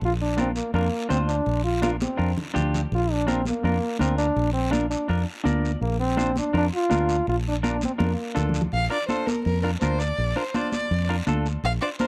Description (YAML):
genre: latin, cumbia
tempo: 165 BPM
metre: 4/4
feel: straight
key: Bb major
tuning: A4 = 441 Hz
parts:
  - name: clear trombone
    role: second line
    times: 0.0-8.5 s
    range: Bb3 to F4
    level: -28 LUFS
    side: equal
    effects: none
  - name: fingered electric bass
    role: bass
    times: 0.0-11.8 s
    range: Bb1 to F2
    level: -27 LUFS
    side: equal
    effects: none
  - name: guiro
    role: percussion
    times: 0.0-12.1 s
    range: none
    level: -42 LUFS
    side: equal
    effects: none
  - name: semi-hollow electric guitar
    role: accompaniment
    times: 0.4-12.1 s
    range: D4 to D5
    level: -33 LUFS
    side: equal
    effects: spring reverb
  - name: congas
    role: percussion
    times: 0.4-12.1 s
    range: none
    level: -32 LUFS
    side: equal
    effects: none
  - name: rich violin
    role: melody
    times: 8.7-12.1 s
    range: Bb4 to F5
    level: -30 LUFS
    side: equal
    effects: none
room: little or no reverb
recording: dry, close 1970s-style studio recording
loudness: -24 LUFS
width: mono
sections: 0.0-8.7 A section; 8.7-12.1 B section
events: trombone solo 0.0-8.7; drum fill 1.8-2.9, 8.0-8.7; clean electric guitar fill 5.3-5.8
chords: 0.0 Bb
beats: | 0.02 0.38 0.74 1.10 | 1.47 1.83 2.19 2.56 | 2.92 3.28 3.64 4.01 | 4.37 4.73 5.09 5.46 | 5.82 6.18 6.55 6.91 | 7.27 7.63 8.00 8.36 | 8.72 9.09 9.45 9.81 | 10.18 10.54 10.90 11.27 | 11.63 11.99